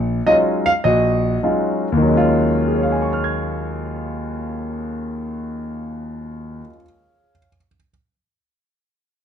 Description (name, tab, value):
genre	solo jazz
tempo	96 BPM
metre	4/4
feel	swing 69% on 8ths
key	Eb minor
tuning	A4 = 440 Hz
part	warm concert grand piano	solo	0.0-7.9 s	Bb1 to Ab6	-18 LUFS	equal	none
room	moderate studio reverb, RT60 0.9 s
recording	dark, warm production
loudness	-17 LUFS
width	side -8 dB against mid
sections	0.0-2.0 A section; 2.0-7.0 B section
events	slowing down 0.0-2.0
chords	0.0 Ebm11